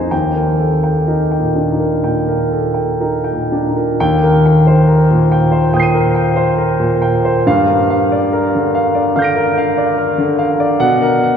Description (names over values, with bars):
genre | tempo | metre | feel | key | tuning
classical, impressionist solo piano | 59-74 BPM | 4/4 | rubato | Eb major | A4 = 440 Hz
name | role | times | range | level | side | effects
warm concert grand piano | solo | 0.0-11.4 s | Eb2 to Eb7 | -12 LUFS | equal | none
room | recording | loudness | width
wet cathedral reverb, RT60 4.3 s | minimal, uncompressed stereo recording | -12 LUFS | side -7 dB against mid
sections
0.0-4.0 A section; 4.0-11.4 A section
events
none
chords
0.1 Ebmaj7; 4.0 Eb6; 7.5 Gm7; 10.8 Bmaj7(no3)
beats
| 0.12 1.08 2.05 3.00 | 3.98 4.87 5.72 6.59 | 7.46 8.32 9.14 9.97 | 10.82